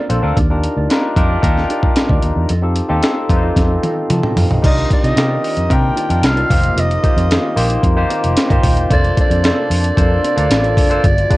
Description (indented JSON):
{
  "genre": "polished 1980s jazz-funk pop",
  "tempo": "112 BPM",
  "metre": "4/4",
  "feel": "straight",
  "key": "Bb major",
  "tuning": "A4 = 440 Hz",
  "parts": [
    { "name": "barky tine electric piano", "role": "accompaniment", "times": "0.0-11.4 s", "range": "Ab3 to Bb5", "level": "-19 LUFS", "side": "left 1 dB", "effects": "wide subtle chorus" },
    { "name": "mellow electric guitar", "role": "riff", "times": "0.0-11.3 s", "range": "Bb3 to F5", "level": "-28 LUFS", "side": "right 4 dB", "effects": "none" },
    { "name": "vintage muted fingered electric bass", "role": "bass", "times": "0.1-11.2 s", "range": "Eb1 to F3", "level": "-17 LUFS", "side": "equal", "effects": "none" },
    { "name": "breakbeat sampler-style drum kit", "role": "drums", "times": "0.1-11.4 s", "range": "crash cymbal, hi-hat, kick drum, snare drum, toms", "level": "-16 LUFS", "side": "equal", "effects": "none" },
    { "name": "warm analog pad", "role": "sustained chords", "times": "4.6-11.4 s", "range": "B2 to A4", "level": "-28 LUFS", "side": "equal", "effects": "none" },
    { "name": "breathy soprano saxophone", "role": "melody", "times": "4.7-11.4 s", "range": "D5 to G5", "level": "-19 LUFS", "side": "equal", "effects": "cassette tape" }
  ],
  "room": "light reverb",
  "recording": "home recording on cassette, nothing above 10.9 kHz",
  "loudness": "-12 LUFS",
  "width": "side -18 dB against mid",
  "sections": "0.0-4.6 A section; 4.6-11.4 B section",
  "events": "drum fill 3.6-4.6; tine electric piano fill 8.1-8.9",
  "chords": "0.4 Ebmaj7; 2.5 F7; 4.6 Cm11; 6.5 F7sus4; 8.9 Bbmaj9/F"
}